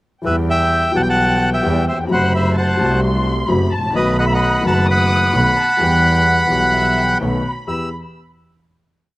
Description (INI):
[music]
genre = tango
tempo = 129 BPM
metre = 4/4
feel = rubato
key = E harmonic minor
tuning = A4 = 440 Hz
[part]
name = dark studio violin section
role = second line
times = 0.2-7.9 s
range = E5 to D#6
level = -24 LUFS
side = left 1 dB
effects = slapback echo
[part]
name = warm concert grand piano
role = accompaniment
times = 0.2-7.9 s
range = F#1 to G4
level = -20 LUFS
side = left 2 dB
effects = none
[part]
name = clear double bass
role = bass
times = 0.2-7.9 s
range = F#1 to E2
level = -19 LUFS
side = right 1 dB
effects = none
[part]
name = bandoneon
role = melody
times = 0.3-7.9 s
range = B4 to E6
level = -16 LUFS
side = equal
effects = slapback echo
[sound]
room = little or no reverb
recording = recorded outdoors, with no room sound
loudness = -14 LUFS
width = side -19 dB against mid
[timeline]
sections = 0.2-7.7 A section; 7.7-9.2 final chord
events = none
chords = 0.2 Em; 2.1 F#dim; 4.0 B7; 5.8 Em; 7.2 B7; 7.7 Em